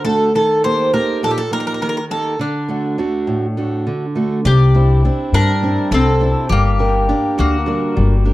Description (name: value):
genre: greek folk, Greek bouzouki band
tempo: 204 BPM (eighths)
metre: 7/8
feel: straight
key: unclear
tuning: A4 = 440 Hz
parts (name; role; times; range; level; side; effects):
- Greek bouzouki; melody; 0.0-8.2 s; D4 to D5; -20 LUFS; equal; tape echo
- picked steel-string acoustic guitar; accompaniment; 0.0-8.3 s; A2 to Bb4; -19 LUFS; right 2 dB; none
- mandolin; second line; 4.5-8.2 s; Bb3 to G4; -20 LUFS; left 4 dB; none
- upright bass; bass; 4.5-8.3 s; G1 to G2; -15 LUFS; left 1 dB; none
room: small room ambience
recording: dry, close 1970s-style studio recording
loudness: -14 LUFS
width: side -16 dB against mid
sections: 0.0-4.5 A section; 4.5-8.3 B section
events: none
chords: 0.3 Eb; 2.4 D; 4.5 Cadd9; 6.5 Gm